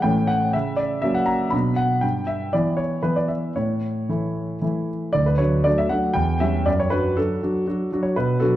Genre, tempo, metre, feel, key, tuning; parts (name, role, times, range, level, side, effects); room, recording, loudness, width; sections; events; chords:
classical-period piano sonatina; 120 BPM; 3/4; rubato; D major; A4 = 440 Hz
warm concert grand piano; solo; 0.0-8.6 s; D2 to B5; -19 LUFS; equal
wet recital hall reverb, RT60 1.6 s; dark, warm production; -20 LUFS; side -13 dB against mid
0.0-5.2 A section; 5.2-8.6 A section
0.0 A; 0.5 F#/C#; 1.5 Bm; 2.0 Em/G; 3.6 A; 5.2 D; 6.2 C#dim/E; 6.7 D/F#